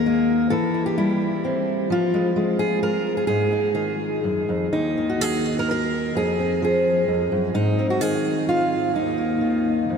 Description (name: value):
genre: folk, solo fingerstyle acoustic guitar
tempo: 128 BPM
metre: 3/4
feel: rubato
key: unclear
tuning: A4 = 442 Hz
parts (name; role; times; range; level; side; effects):
- fingerpicked steel-string acoustic guitar; solo; 0.0-10.0 s; Eb2 to Bb4; -19 LUFS; equal; ping-pong delay
room: wet huge ambient reverb, RT60 7.7 s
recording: dreamy mix soaked in reverb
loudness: -20 LUFS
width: side -6 dB against mid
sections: 0.0-10.0 A section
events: none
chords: 0.0 Eb5; 0.5 C/E; 1.9 Fm; 3.3 Ab5; 4.7 N.C.; 6.2 Fm; 7.5 Ab; 8.9 Eb5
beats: 0.04 | 0.51 0.97 1.44 | 1.90 2.36 2.82 | 3.28 3.76 4.24 | 4.73 5.21 5.68 | 6.15 6.62 7.08 | 7.54 8.01 8.47 | 8.94 9.41 9.89